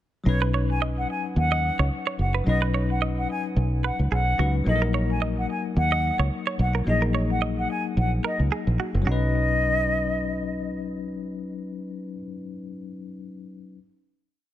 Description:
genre	afrobeats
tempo	109 BPM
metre	4/4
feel	swing 55% on 16ths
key	B major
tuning	A4 = 441 Hz
part	bell-like tine electric piano	accompaniment	0.2-13.8 s	F#3 to B4	-30 LUFS	left 5 dB	fast stereo tremolo
part	concert flute	melody	0.3-10.7 s	C#5 to G#5	-28 LUFS	left 1 dB	digital delay
part	fingered electric bass	bass	0.3-12.2 s	F#1 to D#2	-24 LUFS	equal	none
part	direct-recorded clean electric guitar	riff	0.4-9.2 s	F#4 to D#5	-31 LUFS	right 8 dB	digital delay
room	light reverb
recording	none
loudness	-22 LUFS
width	side -12 dB against mid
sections	0.3-9.1 verse; 9.1-11.3 final chord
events	none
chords	0.3 Badd9; 4.7 D#m/A#; 9.1 Badd9

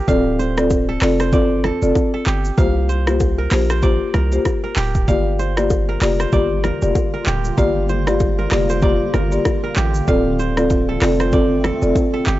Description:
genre	afrobeats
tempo	96 BPM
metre	4/4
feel	swing 58% on 16ths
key	G minor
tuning	A4 = 439 Hz
part	kora	riff	0.0-12.4 s	G4 to F5	-27 LUFS	right 5 dB	tape echo
part	marimba with soft mallets	accompaniment	0.1-12.0 s	Bb3 to D5	-19 LUFS	left 2 dB	none
part	hard-hitting 808-style bass	bass	0.1-12.4 s	D1 to C2	-20 LUFS	equal	none
part	afro-pop drum kit	drums	0.1-12.4 s	handclaps, hi-hat, kick drum, rim click, shaker	-21 LUFS	equal	none
part	congas and bongos	percussion	0.1-12.1 s	none	-27 LUFS	left 2 dB	none
part	granular cloud pad	sustained chords	5.8-12.4 s	D3 to F4	-27 LUFS	right 1 dB	built-in reverb
room	small room ambience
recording	dry, gritty hardware recording, cassette tape, nothing above 7.7 kHz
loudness	-15 LUFS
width	side -15 dB against mid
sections	0.0-12.4 A section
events	none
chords	0.1 Dm7

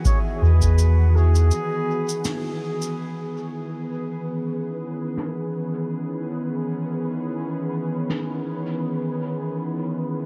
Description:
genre	ambient dub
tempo	82 BPM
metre	4/4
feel	swing 55% on 16ths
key	C# minor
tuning	A4 = 441 Hz
part	warm analog pad	sustained chords	0.0-10.3 s	D#3 to G#4	-29 LUFS	equal	chorus
part	wind-like tuned noise texture	texture	0.0-10.3 s	G#4 to B4	-39 LUFS	equal	built-in reverb
part	trumpet with bucket mute	melody	0.1-2.6 s	G#4 to C#5	-35 LUFS	equal	dub echo
part	cabasa and snare drum	drums	0.1-8.3 s	none	-36 LUFS	equal	low-pass filter on snare, low-pass filter on perc, low-pass filter on room, dub echo
part	electronic kick drum	drums	0.1-0.8 s	none	-24 LUFS	equal	none
part	soft dub sub bass	bass	0.4-1.5 s	E2	-17 LUFS	equal	none
room	small room reverb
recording	none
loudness	-24 LUFS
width	mono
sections	0.0-3.0 A section; 3.0-10.3 B section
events	break 1.5-3.0; band accent 2.2-2.6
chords	0.0 Emaj9; 3.0 C#m9

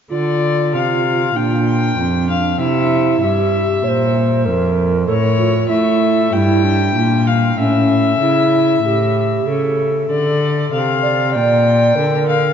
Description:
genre	classical, renaissance-style consort dance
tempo	96 BPM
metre	4/4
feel	straight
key	D minor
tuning	A4 = 441 Hz
part	dark violin	melody	0.1-12.5 s	C#5 to G5	-19 LUFS	left 6 dB	none
part	mellow hollow tenor recorder	second line	0.1-12.5 s	C4 to D5	-18 LUFS	right 2 dB	none
part	rich cello	bass	0.1-12.5 s	F2 to A3	-17 LUFS	equal	none
room	wet church reverb, RT60 3.4 s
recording	dark, warm production, nothing above 7.5 kHz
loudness	-13 LUFS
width	side -8 dB against mid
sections	0.1-12.5 A section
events	none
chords	0.1 Dm; 1.4 Bb; 2.6 C; 3.8 Bb5; 5.1 A; 6.3 Gm; 7.6 A; 10.1 Dm; 11.3 Bb

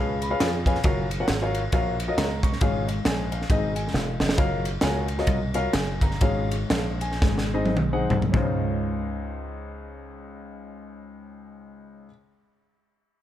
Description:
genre	uptempo gospel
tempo	101-136 BPM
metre	4/4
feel	swing 60% on 8ths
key	Db major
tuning	A4 = 441 Hz
part	warm upright piano	accompaniment	0.0-12.1 s	Db2 to Db6	-28 LUFS	left 3 dB	none
part	dry thumbed slap bass	bass	0.0-12.1 s	Fb1 to F2	-28 LUFS	equal	none
part	crisp fusion drum kit	drums	0.2-8.5 s	kick drum, ride cymbal, snare drum, toms	-25 LUFS	right 1 dB	none
room	light reverb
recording	dark, warm production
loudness	-22 LUFS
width	side -12 dB against mid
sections	0.0-4.4 A section; 4.4-8.3 B section; 8.3-13.1 C section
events	upright piano fill 0.0-0.8; drum fill 3.9-4.4, 7.2-8.3; slowing down 4.4-8.3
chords	0.0 Db7; 0.8 Gbmaj7; 2.6 Db/Ab; 3.5 Ab; 4.4 Gbmaj7; 6.2 Db/Ab; 7.2 Ab; 8.3 Dbmaj9

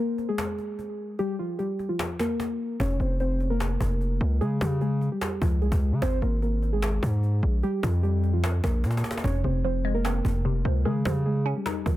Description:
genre	hip hop, trap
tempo	149 BPM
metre	4/4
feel	half-time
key	F minor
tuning	A4 = 440 Hz
part	muted felt-like synth keys	melody	0.0-12.0 s	F3 to Db5	-29 LUFS	left 1 dB	chorus, low-pass filter
part	cajon	drums	0.2-12.0 s	none	-33 LUFS	equal	none
part	distorted 808-style bass	bass	2.8-12.0 s	F1 to Db3	-24 LUFS	equal	distortion
part	glassy wavetable pluck	accompaniment	9.2-12.0 s	F2 to Eb4	-30 LUFS	right 1 dB	chorus, low-pass filter
room	little or no reverb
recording	dense, heavily limited modern master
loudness	-24 LUFS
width	side -15 dB against mid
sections	0.0-12.0 A section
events	break 0.0-2.8; drum fill 8.8-9.2; hi-hats muted 9.2-12.0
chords	0.0 Absus2; 1.2 Bb5; 2.8 F5; 4.4 Db; 6.0 Abadd9; 7.6 Bb5; 9.2 Fm; 10.9 Dbadd9

